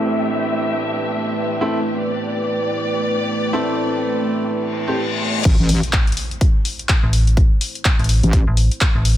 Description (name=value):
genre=bass house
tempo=125 BPM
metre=4/4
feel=swing 60% on 16ths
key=A minor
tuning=A4 = 440 Hz
part: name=dark analog pad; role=sustained chords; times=0.0-9.2 s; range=A3 to C5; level=-24 LUFS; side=right 1 dB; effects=chorus, sidechain pumping
part: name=bright grand piano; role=stabs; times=0.0-5.0 s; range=A3 to G4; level=-24 LUFS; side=right 1 dB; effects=sidechain pumping, dub echo
part: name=dark symphonic string section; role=texture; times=0.0-5.0 s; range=A3 to E5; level=-24 LUFS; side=left 2 dB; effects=sidechain pumping
part: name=reverse cymbal and impact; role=sound effects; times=4.7-7.4 s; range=none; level=-26 LUFS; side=left 2 dB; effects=none
part: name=wobble bass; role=bass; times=5.5-8.5 s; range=A1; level=-16 LUFS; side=equal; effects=chorus, sidechain pumping
part: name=big-room dance drum kit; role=drums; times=5.5-9.2 s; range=crash cymbal, handclaps, hi-hat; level=-22 LUFS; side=left 1 dB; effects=none
part: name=electronic kick drum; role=drums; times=5.5-8.9 s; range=none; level=-16 LUFS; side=equal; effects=none
part: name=metallic FM bass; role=bass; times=7.0-9.2 s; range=A1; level=-15 LUFS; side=equal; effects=tube saturation, sidechain pumping
room=light reverb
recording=low-pass filter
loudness=-16 LUFS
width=side -12 dB against mid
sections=0.0-5.5 A section; 5.5-9.2 B section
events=filter sweep on grand piano 0.0-5.5; filter sweep 0.0-5.5; reverse cymbal 4.7-5.5; drop 5.5-9.2; impact 5.5-7.4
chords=0.0 Am